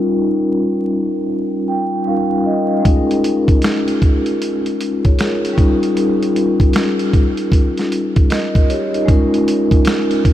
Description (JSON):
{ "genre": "lo-fi hip hop", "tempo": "77 BPM", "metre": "4/4", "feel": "swing 64% on 16ths", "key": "unclear", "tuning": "A4 = 440 Hz", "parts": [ { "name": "vibraphone with soft mallets", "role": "accompaniment", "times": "0.0-10.3 s", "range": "G3 to G5", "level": "-15 LUFS", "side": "left 1 dB", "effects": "cassette tape, low-pass filter" }, { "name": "dusty soul sampler-style drum kit", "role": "drums", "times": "2.9-10.3 s", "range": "finger snaps, hi-hat, kick drum, snare drum", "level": "-15 LUFS", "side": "equal", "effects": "none" } ], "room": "moderate huge ambient reverb, RT60 4.6 s", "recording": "dreamy mix soaked in reverb, vinyl crackle", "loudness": "-13 LUFS", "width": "side -12 dB against mid", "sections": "0.0-9.1 A section; 9.1-10.3 B section", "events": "filter sweep on vibraphone 0.0-9.1; vibraphone fill 1.3-2.9", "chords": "0.0 Eb7; 2.9 Db6; 5.6 Eb7; 9.1 Db6" }